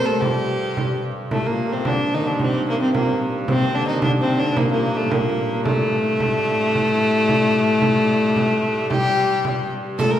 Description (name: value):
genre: medieval dance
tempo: 111 BPM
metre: 2/4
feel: straight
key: G minor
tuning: A4 = 435 Hz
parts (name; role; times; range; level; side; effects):
- rich fiddle; melody; 0.0-10.2 s; A3 to Bb4; -21 LUFS; equal; none
- concert harp; second line; 0.0-10.2 s; A3 to D5; -26 LUFS; right 2 dB; none
- rich viola da gamba; second line; 0.0-10.2 s; A2 to A3; -24 LUFS; left 4 dB; none
- clear hurdy-gurdy; drone; 0.0-10.2 s; G2; -30 LUFS; equal; none
- frame drum; percussion; 0.2-10.2 s; none; -25 LUFS; right 1 dB; none
- riq; percussion; 10.0-10.2 s; none; -31 LUFS; right 4 dB; none
room: wet recital hall reverb, RT60 1.8 s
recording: recorded in a church or concert hall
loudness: -17 LUFS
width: side -10 dB against mid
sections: 0.0-1.3 A section; 1.3-10.0 B section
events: none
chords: none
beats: | 0.23 0.77 | 1.32 1.86 | 2.40 2.94 | 3.49 4.03 | 4.57 5.11 | 5.66 6.20 | 6.74 7.28 | 7.82 8.36 | 8.90 9.44 | 9.98